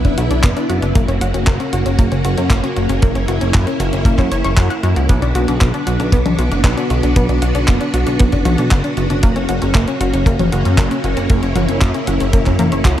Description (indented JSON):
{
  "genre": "italo disco",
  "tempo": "116 BPM",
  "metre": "4/4",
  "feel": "straight",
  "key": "B harmonic minor",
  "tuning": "A4 = 435 Hz",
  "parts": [
    { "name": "string machine, full ensemble", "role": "sustained chords", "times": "0.0-13.0 s", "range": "A#3 to F#4", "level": "-20 LUFS", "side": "equal", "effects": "ensemble chorus" },
    { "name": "analog pluck", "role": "arpeggios", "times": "0.0-12.9 s", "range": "A#3 to F#5", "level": "-21 LUFS", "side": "left 1 dB", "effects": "chorus, digital delay" },
    { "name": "chorused synth bass", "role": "bass", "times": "0.0-13.0 s", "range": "F#1 to F#2", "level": "-18 LUFS", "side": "equal", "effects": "tube saturation" },
    { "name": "clean 12-bit digital drum machine", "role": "drums", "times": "0.0-13.0 s", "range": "handclaps, hi-hat, toms", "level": "-23 LUFS", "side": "left 2 dB", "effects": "none" },
    { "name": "kick drum", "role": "drums", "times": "0.0-13.0 s", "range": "none", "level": "-14 LUFS", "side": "equal", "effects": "none" }
  ],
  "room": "light reverb, digital ambience",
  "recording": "dark, warm production",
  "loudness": "-13 LUFS",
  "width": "side -11 dB against mid",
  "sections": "0.0-13.0 A section",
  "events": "none",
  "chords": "0.0 Bm; 1.0 F#; 5.1 Bm; 9.2 F#"
}